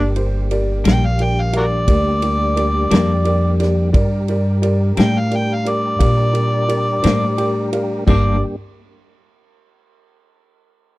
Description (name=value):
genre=slow blues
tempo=58 BPM (dotted quarters)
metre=12/8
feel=straight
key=G minor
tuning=A4 = 440 Hz
part: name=overdriven harmonica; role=melody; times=0.0-8.4 s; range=D4 to G5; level=-21 LUFS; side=equal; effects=none
part: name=clean electric guitar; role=accompaniment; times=0.0-8.4 s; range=G2 to D4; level=-19 LUFS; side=left 4 dB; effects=tremolo
part: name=warm upright piano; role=accompaniment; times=0.0-8.4 s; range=G4 to G5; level=-24 LUFS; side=right 1 dB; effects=none
part: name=mellow tonewheel organ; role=sustained chords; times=0.0-8.6 s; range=G3 to Bb4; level=-25 LUFS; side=left 1 dB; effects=slow rotary speaker, overdrive
part: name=upright bass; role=bass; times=0.0-8.4 s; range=G1 to Bb2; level=-18 LUFS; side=equal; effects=none
part: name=natural country drum kit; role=drums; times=0.2-8.2 s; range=china cymbal, kick drum, ride cymbal, snare drum, toms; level=-18 LUFS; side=equal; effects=none
room=little or no reverb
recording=dry, close 1970s-style studio recording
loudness=-14 LUFS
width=side -19 dB against mid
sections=0.0-8.1 A section; 8.1-11.0 B section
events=harmonica solo 0.0-8.1; upright piano fill 7.0-8.1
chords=0.0 Gm